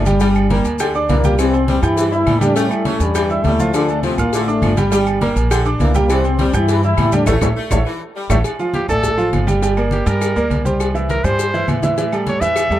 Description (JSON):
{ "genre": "latin, salsa", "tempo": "204 BPM", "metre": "4/4", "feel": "straight", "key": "D minor", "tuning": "A4 = 444 Hz", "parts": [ { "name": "mellow trombone section", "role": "melody", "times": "0.0-8.4 s", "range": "G2 to E4", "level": "-19 LUFS", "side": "left 2 dB", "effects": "none" }, { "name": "edgy saxophone section", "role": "second line", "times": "0.0-8.3 s", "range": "D3 to A3", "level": "-25 LUFS", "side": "left 2 dB", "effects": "none" }, { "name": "upright bass", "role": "bass", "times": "0.0-12.8 s", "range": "G1 to A2", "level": "-19 LUFS", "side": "equal", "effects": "none" }, { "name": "bright grand piano", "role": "accompaniment", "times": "0.1-12.8 s", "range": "E3 to G6", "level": "-20 LUFS", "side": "right 2 dB", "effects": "none" }, { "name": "congas", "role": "percussion", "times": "0.1-12.8 s", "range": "none", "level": "-23 LUFS", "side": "left 1 dB", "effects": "none" }, { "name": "cowbell", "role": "percussion", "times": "0.1-12.7 s", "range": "none", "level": "-28 LUFS", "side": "left 5 dB", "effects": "none" }, { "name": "maracas", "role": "percussion", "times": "0.1-12.8 s", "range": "none", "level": "-34 LUFS", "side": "left 9 dB", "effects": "none" }, { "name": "agogo bells and timbales", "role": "percussion", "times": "0.2-12.7 s", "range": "none", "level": "-28 LUFS", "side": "right 4 dB", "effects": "none" }, { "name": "claves", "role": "percussion", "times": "0.4-12.7 s", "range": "none", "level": "-34 LUFS", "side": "left 1 dB", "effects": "none" }, { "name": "bright trumpet", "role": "melody", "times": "8.7-12.8 s", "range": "G4 to E5", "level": "-21 LUFS", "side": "equal", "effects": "none" } ], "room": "light reverb", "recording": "dark, warm production", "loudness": "-14 LUFS", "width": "side -13 dB against mid", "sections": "0.0-8.4 A section; 8.4-12.8 B section", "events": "drum fill 7.3-8.4; band accent 7.3-8.4; trumpet solo 8.4-12.8", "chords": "0.2 Gm; 1.4 C; 2.6 A7; 3.7 Dm; 4.9 Gm; 6.1 C; 7.3 A7; 8.4 Dm; 9.6 Gm; 10.8 C; 12.0 A5" }